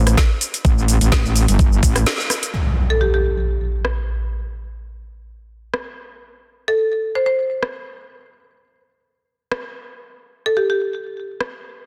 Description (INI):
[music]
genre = bass house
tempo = 127 BPM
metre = 4/4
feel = swing 55% on 16ths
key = unclear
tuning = A4 = 441 Hz
[part]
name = metallic wobble bass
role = bass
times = 0.0-2.0 s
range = G1 to A1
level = -18 LUFS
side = equal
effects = chorus, overdrive, sidechain pumping
[part]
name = garage drum kit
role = drums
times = 0.1-11.5 s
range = hi-hat, rim click, shaker, snare drum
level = -25 LUFS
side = equal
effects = overdrive, low-pass filter on perc, low-pass filter on hats, low-pass filter on snare
[part]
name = electronic kick drum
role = drums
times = 0.2-1.9 s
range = none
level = -18 LUFS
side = equal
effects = overdrive
[part]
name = impact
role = sound effects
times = 2.5-4.4 s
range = none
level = -24 LUFS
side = equal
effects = none
[part]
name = marimba with hard mallets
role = melody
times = 2.9-3.2, 6.7-7.3, 10.5-10.8 s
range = G4 to C5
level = -22 LUFS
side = equal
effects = digital delay
[sound]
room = light reverb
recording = dense, heavily limited modern master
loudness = -19 LUFS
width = mono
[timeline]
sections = 0.0-2.5 A section; 2.5-11.9 B section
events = break 2.1-2.5; band accent 2.1; impact 2.5-4.4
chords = 0.0 Gsus2; 2.5 N.C.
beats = 0.17 | 0.65 1.12 1.59 2.06 | 2.54 3.01 3.48 3.95 | 4.43 4.90 5.37 5.84 | 6.32 6.79 7.26 7.73 | 8.21 8.68 9.15 9.62 | 10.10 10.57 11.04